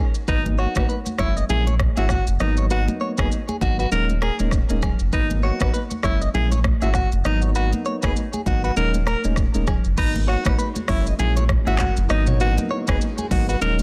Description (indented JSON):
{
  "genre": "afrobeats",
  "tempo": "99 BPM",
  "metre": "4/4",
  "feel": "swing 58% on 16ths",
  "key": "G# minor",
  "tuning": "A4 = 438 Hz",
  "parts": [
    { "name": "soft electric-piano-like synth keys", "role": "accompaniment", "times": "0.0-13.8 s", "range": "F#3 to E4", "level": "-31 LUFS", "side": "equal", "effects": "chorus" },
    { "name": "direct-recorded clean electric guitar", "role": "riff", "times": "0.0-13.6 s", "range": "G#4 to F#5", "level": "-33 LUFS", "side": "equal", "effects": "tremolo, tape echo" },
    { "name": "afro-pop drum kit", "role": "drums", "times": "0.1-13.8 s", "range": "crash cymbal, handclaps, hi-hat, kick drum, rim click, shaker, toms", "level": "-26 LUFS", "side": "equal", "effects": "soft clipping on snare" },
    { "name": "edgy alto saxophone", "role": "melody", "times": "0.3-13.8 s", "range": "D#4 to A#4", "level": "-30 LUFS", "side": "equal", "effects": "tape echo" },
    { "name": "warm sub bass", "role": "bass", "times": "0.3-13.8 s", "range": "D#1 to A#1", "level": "-24 LUFS", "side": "equal", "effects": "none" },
    { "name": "congas", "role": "percussion", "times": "0.5-13.8 s", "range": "none", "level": "-33 LUFS", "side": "equal", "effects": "none" },
    { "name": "granular cloud pad", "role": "sustained chords", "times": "10.6-13.8 s", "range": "D#3 to A#4", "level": "-38 LUFS", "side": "equal", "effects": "none" }
  ],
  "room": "light reverb",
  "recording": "dense, heavily limited modern master",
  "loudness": "-21 LUFS",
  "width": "mono",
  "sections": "0.0-10.0 A section; 10.0-13.8 B section",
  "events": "none",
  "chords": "0.3 G#m7; 1.2 F#7; 2.4 G#m7; 3.9 D#7sus4; 5.1 G#m7; 6.0 F#7; 7.3 G#m7; 8.8 D#7sus4; 10.0 G#m7; 10.9 F#7; 12.1 G#m7"
}